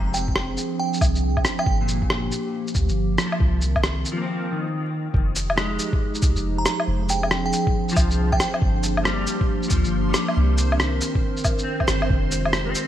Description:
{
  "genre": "future garage",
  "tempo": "138 BPM",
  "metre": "4/4",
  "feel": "swing 65% on 16ths",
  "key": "C minor",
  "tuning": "A4 = 440 Hz",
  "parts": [
    { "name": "clean electric guitar", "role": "accompaniment", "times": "0.0-12.9 s", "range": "Bb2 to C4", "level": "-30 LUFS", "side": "left 2 dB", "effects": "ensemble chorus, sidechain pumping, ping-pong delay" },
    { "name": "warbly tape-like pad", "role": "sustained chords", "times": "0.0-12.9 s", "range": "Eb3 to Bb4", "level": "-27 LUFS", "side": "right 1 dB", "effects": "chorus, built-in reverb, sidechain pumping" },
    { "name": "soft 808-style bass", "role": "bass", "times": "0.0-12.7 s", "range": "F1 to D2", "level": "-24 LUFS", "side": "equal", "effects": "sidechain pumping" },
    { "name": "glassy synth bell", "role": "melody", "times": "0.1-1.7, 6.6-8.5 s", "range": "G5 to Bb5", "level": "-29 LUFS", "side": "right 3 dB", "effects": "chorus, digital delay" },
    { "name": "electronic shaker, rim click, woodblock and cabasa", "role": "drums", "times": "0.1-12.9 s", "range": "none", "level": "-25 LUFS", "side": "left 1 dB", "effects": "small room ambience" },
    { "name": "electronic kick drum", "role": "drums", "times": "0.3-12.2 s", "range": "none", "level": "-23 LUFS", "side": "equal", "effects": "small room ambience" },
    { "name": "backwards swelling texture", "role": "texture", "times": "5.8-12.9 s", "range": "C5", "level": "-36 LUFS", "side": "right 2 dB", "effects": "built-in reverb" }
  ],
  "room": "light reverb",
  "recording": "bright 1980s-style digital production, vinyl crackle",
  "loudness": "-20 LUFS",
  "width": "side -11 dB against mid",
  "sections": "0.0-5.1 A section; 5.1-12.9 B section",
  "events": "break 4.3-5.1",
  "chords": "0.0 Dm7b5/F; 1.7 Gm7; 3.4 Cm9; 5.1 Fm9; 6.9 Dm7b5/F; 8.6 Gm7; 10.4 Cm9; 12.1 Fm9"
}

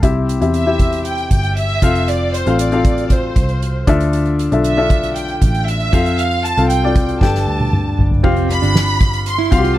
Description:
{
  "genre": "piano-driven pop",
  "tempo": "117 BPM",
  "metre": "4/4",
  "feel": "straight",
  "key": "unclear",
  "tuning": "A4 = 441 Hz",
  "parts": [
    { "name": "warm baby grand piano", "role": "accompaniment", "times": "0.0-9.8 s", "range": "G2 to G5", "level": "-18 LUFS", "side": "left 4 dB", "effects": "none" },
    { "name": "vintage muted picked electric bass", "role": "bass", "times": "0.0-9.8 s", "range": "F1 to F2", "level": "-19 LUFS", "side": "equal", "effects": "none" },
    { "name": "soft-mallet drum kit", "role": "drums", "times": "0.0-9.8 s", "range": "crash cymbal, hi-hat, kick drum, snare drum, toms", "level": "-16 LUFS", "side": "equal", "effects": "none" },
    { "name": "warm studio violin section", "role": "melody", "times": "0.5-9.8 s", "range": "C5 to C6", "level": "-21 LUFS", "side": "right 2 dB", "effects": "none" },
    { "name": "fingerpicked plugged-in steel-string acoustic guitar", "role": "riff", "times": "8.2-9.8 s", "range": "C4 to F4", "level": "-22 LUFS", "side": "right 14 dB", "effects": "none" }
  ],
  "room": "little or no reverb",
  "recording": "dry, close 1970s-style studio recording",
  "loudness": "-13 LUFS",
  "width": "side -14 dB against mid",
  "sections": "0.0-8.2 A section; 8.2-9.8 B section",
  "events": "drum fill 7.2-8.2",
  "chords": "0.0 C; 1.8 F; 3.9 Dmadd9; 5.9 F; 7.2 Gsus2; 8.2 Fsus2"
}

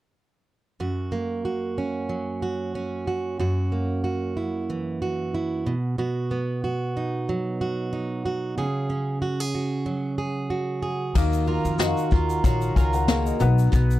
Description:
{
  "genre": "acoustic pop",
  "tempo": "93 BPM",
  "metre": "4/4",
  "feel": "swing 55% on 16ths",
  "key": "F# major",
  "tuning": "A4 = 439 Hz",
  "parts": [
    { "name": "fingerpicked plugged-in steel-string acoustic guitar", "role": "accompaniment", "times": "0.8-14.0 s", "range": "F#2 to G#4", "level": "-25 LUFS", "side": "right 2 dB", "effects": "none" },
    { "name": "felt-muted upright piano", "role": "accompaniment", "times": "11.1-14.0 s", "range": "D#4 to A#5", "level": "-29 LUFS", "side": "left 10 dB", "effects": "none" },
    { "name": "mandolin", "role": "arpeggios", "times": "11.2-14.0 s", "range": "A#3 to E#5", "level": "-31 LUFS", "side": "right 4 dB", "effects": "none" },
    { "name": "upright bass", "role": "bass", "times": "11.2-14.0 s", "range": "A#1 to E#2", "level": "-23 LUFS", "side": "left 1 dB", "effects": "none" },
    { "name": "vintage brush drum kit", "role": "drums", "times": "11.2-14.0 s", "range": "crash cymbal, kick drum, shaker, snare drum", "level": "-22 LUFS", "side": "left 2 dB", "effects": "none" },
    { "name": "egg shaker", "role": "percussion", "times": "11.2-14.0 s", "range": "none", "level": "-45 LUFS", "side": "left 23 dB", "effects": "none" }
  ],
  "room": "little or no reverb",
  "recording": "dry, close 1970s-style studio recording",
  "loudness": "-23 LUFS",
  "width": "side -15 dB against mid",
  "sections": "0.8-11.2 A section; 11.2-14.0 B section",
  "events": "none",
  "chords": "0.8 F#; 3.4 F#7; 5.7 B; 8.6 C#sus4; 11.2 D#madd9; 13.4 B"
}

